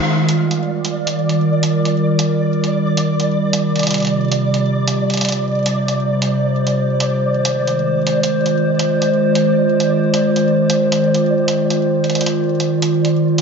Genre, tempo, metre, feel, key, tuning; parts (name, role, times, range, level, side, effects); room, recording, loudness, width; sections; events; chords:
IDM; 134 BPM; 4/4; straight; F dorian; A4 = 443 Hz
warbly tape-like pad; sustained chords; 0.0-13.4 s; C3 to C5; -15 LUFS; right 1 dB; chorus, built-in reverb
flickering grainy texture; texture; 0.0-13.4 s; D5; -23 LUFS; right 1 dB; built-in reverb, ensemble chorus
electronic hi-hat; drums; 0.3-13.4 s; -23 LUFS; right 1 dB
wet lush hall reverb, RT60 2.0 s, digital ambience; dreamy mix soaked in reverb, nothing above 7.5 kHz; -14 LUFS; side -5 dB against mid
0.1-13.4 A section
0.1 Ebadd9; 3.6 Csus4; 7.2 Fm7